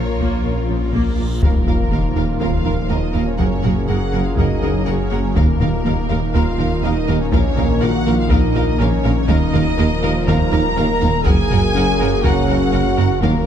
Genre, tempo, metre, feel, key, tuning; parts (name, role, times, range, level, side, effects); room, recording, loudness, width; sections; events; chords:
cinematic, hybrid orchestral and electronic film score; 122 BPM; 4/4; straight; Eb minor; A4 = 439 Hz
clear studio violin section; melody; 0.0-13.3 s; Db5 to Gb5; -33 LUFS; left 4 dB
rich symphonic violin section; second line; 0.0-13.5 s; F4 to Bb5; -27 LUFS; left 3 dB
rich symphonic viola section; accompaniment; 0.0-13.3 s; F3 to Bb4; -29 LUFS; left 1 dB
warm analog pad; sustained chords; 0.0-13.5 s; Eb3 to Bb4; -28 LUFS; left 1 dB
harp-like synth pluck; arpeggios; 0.0-13.4 s; Eb3 to Bb4; -26 LUFS; left 3 dB; chorus, tape echo
detuned saw bass; bass; 0.0-13.5 s; Eb1 to Bb1; -23 LUFS; left 1 dB
warm symphonic cello section; bass; 0.0-13.3 s; Eb2 to Bb2; -24 LUFS; right 3 dB
reverse cymbal and sub drop; sound effects; 1.3-3.4 s; -23 LUFS; left 1 dB
taiko ensemble; drums; 0.2-13.5 s; -21 LUFS; left 1 dB
warm duduk; melody; 1.4-13.5 s; Bb3 to Bb4; -26 LUFS; right 4 dB; tape echo
mellow French horn section; sustained chords; 1.4-13.5 s; Bb3 to Bb4; -28 LUFS; left 5 dB
warm trombone section; sustained chords; 1.4-13.5 s; Gb2 to Gb3; -27 LUFS; right 3 dB
mellow tuba; bass; 1.4-13.3 s; Gb1 to Eb2; -24 LUFS; right 4 dB
rich symphonic double bass section; bass; 1.4-13.3 s; Gb1 to Eb2; -24 LUFS; right 3 dB
moderate scoring stage reverb, RT60 2.0 s; dark, warm production; -15 LUFS; side -9 dB against mid
0.0-1.4 A section; 1.4-13.5 B section
reverse cymbal 1.3; impact 1.4-3.4
0.0 Bbm; 1.4 Ebsus2; 3.4 Gbadd9; 5.4 Ebsus2; 7.3 Bbm; 9.3 Ebsus2; 11.3 Gbadd9